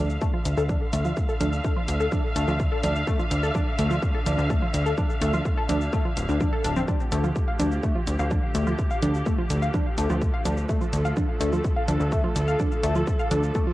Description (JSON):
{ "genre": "melodic techno", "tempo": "126 BPM", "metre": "4/4", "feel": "straight", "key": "D minor", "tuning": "A4 = 440 Hz", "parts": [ { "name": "clear studio string section", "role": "sustained chords", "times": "0.0-13.7 s", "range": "D3 to F5", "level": "-32 LUFS", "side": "equal", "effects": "vintage 12-bit sampler grit, sidechain pumping, cassette tape" }, { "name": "tight sequenced synth", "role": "arpeggios", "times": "0.0-13.7 s", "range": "A3 to F5", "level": "-29 LUFS", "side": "left 1 dB", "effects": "chorus, sidechain pumping, cassette tape, analog delay" }, { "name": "plucky analog bass", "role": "bass", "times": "0.0-13.5 s", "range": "D1 to D2", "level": "-25 LUFS", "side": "equal", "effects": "tube saturation, sidechain pumping" }, { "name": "overtone-sweeping drone", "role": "drone", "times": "0.1-13.7 s", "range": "D3", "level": "-41 LUFS", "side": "right 1 dB", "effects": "none" }, { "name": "electronic shaker, congas and hi-hat", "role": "drums", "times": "0.1-13.7 s", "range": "none", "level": "-32 LUFS", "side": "right 1 dB", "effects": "none" }, { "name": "electronic kick drum", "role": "drums", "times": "0.2-13.6 s", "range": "none", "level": "-26 LUFS", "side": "equal", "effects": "none" }, { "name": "reverse cymbal", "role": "sound effects", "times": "13.7 s", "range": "none", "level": "-54 LUFS", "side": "right 4 dB", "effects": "none" } ], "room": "light reverb, digital ambience", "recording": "home recording on cassette", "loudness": "-22 LUFS", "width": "side -16 dB against mid", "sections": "0.0-13.7 A section", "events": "reverse cymbal 13.7", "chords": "0.0 Dmadd9; 6.9 Fadd9/D", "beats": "0.21 0.69 | 1.17 1.64 2.12 2.60 | 3.07 3.55 4.03 4.50 | 4.98 5.45 5.93 6.41 | 6.88 7.36 7.83 8.31 | 8.79 9.26 9.74 10.21 | 10.69 11.17 11.64 12.12 | 12.60 13.07 13.55" }